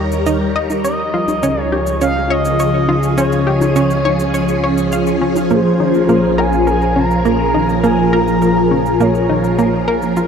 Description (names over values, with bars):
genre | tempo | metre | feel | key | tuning
ambient, sequencer-driven space music | 103 BPM | 4/4 | straight | Bb dorian | A4 = 440 Hz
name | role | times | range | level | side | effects
phased string machine | sustained chords | 0.0-10.3 s | F3 to Db5 | -16 LUFS | equal | ensemble chorus, phaser
analog pluck | riff | 0.0-10.3 s | Bb3 to F5 | -19 LUFS | right 1 dB | chorus, tape echo
analog drone | bass | 0.0-10.3 s | Bb1 to F2 | -21 LUFS | equal | chorus
cabasa and congas | percussion | 0.1-10.3 s | none | -28 LUFS | left 1 dB | overdrive, tape echo
expressive synth lead | melody | 0.8-9.9 s | C5 to Bb5 | -20 LUFS | equal | chorus, tape echo
bubbling stepped-filter texture | texture | 5.8-10.3 s | Bb4 | -29 LUFS | right 3 dB | chorus, built-in reverb
room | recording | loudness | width
wet huge ambient reverb, RT60 8.2 s | dark, warm production | -12 LUFS | side -7 dB against mid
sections
0.0-5.5 A section; 5.5-10.3 B section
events
filter sweep on synth arpeggio sound 0.0-5.5; fade-in on drum 5.5-10.3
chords
0.0 Eb7; 0.8 Db; 5.5 Bbm7